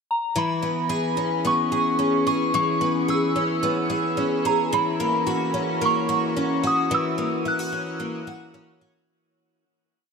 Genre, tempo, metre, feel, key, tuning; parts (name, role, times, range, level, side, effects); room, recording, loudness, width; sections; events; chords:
dream pop; 110 BPM; 4/4; straight; F# mixolydian; A4 = 439 Hz
soft synth bell; melody; 0.1-8.5 s; A#5 to F#6; -24 LUFS; right 2 dB; chorus, phaser, ping-pong delay
picked twelve-string acoustic guitar; arpeggios; 0.4-9.6 s; E3 to G#4; -23 LUFS; left 1 dB; analog chorus, ping-pong delay
wet shimmer reverb, RT60 7.8 s; dark, warm production; -21 LUFS; side -5 dB against mid
0.0-0.4 pickup bar; 0.4-9.1 A section
fade-out 6.9-9.1
0.4 C#m7; 4.7 F#7